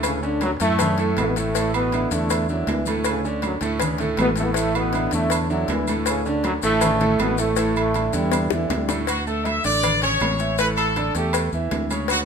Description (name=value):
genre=latin, salsa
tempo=159 BPM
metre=4/4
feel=straight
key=unclear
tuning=A4 = 441 Hz
part: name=dark trombone section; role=melody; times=0.0-9.0 s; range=F#2 to E4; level=-24 LUFS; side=equal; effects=none
part: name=bright grand piano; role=accompaniment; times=0.0-12.2 s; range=A2 to A5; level=-26 LUFS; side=right 4 dB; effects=none
part: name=fingered electric bass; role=bass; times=0.0-12.2 s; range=A1 to F#2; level=-26 LUFS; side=left 1 dB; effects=none
part: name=agogo bells and timbales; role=percussion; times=0.0-12.2 s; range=none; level=-30 LUFS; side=right 7 dB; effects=none
part: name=congas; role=percussion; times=0.0-12.2 s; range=none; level=-32 LUFS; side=left 4 dB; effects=none
part: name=cowbell and bongos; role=percussion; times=0.0-12.2 s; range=none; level=-29 LUFS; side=left 9 dB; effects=none
part: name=maracas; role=percussion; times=0.0-12.2 s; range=none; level=-34 LUFS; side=left 9 dB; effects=none
part: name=bright trumpet section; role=melody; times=9.1-12.2 s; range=F#4 to E5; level=-22 LUFS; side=left 1 dB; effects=none
room=moderate large studio reverb, RT60 1.1 s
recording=minimal, uncompressed stereo recording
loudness=-19 LUFS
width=side -6 dB against mid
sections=0.0-9.1 A section; 9.1-12.2 B section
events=drum fill 8.3-9.1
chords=0.0 Dmaj7; 1.6 Asus4; 3.1 Dmaj7(no3); 4.6 Asus4; 6.1 Dmaj7(no3); 7.6 A7sus4; 9.1 Asus4